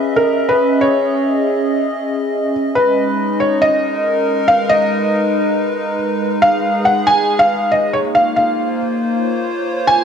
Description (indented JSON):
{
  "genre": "IDM",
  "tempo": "139 BPM",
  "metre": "4/4",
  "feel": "straight",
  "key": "unclear",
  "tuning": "A4 = 437 Hz",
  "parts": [
    { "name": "felt-muted upright piano", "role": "melody", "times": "0.0-10.0 s", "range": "Bb4 to Ab5", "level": "-15 LUFS", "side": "equal", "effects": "vintage 12-bit sampler grit, dub echo" },
    { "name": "hollow soft pad", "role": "sustained chords", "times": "0.0-10.0 s", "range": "Ab3 to Fb5", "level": "-18 LUFS", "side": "equal", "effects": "chorus" }
  ],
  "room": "moderate echo chamber reverb, RT60 2.4 s",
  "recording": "dark, warm production",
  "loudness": "-13 LUFS",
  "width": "side -7 dB against mid",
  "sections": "0.0-2.8 A section; 2.8-10.0 B section",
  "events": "none",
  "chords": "0.0 Dbmadd9; 2.8 Abmadd9; 7.9 Bbm9"
}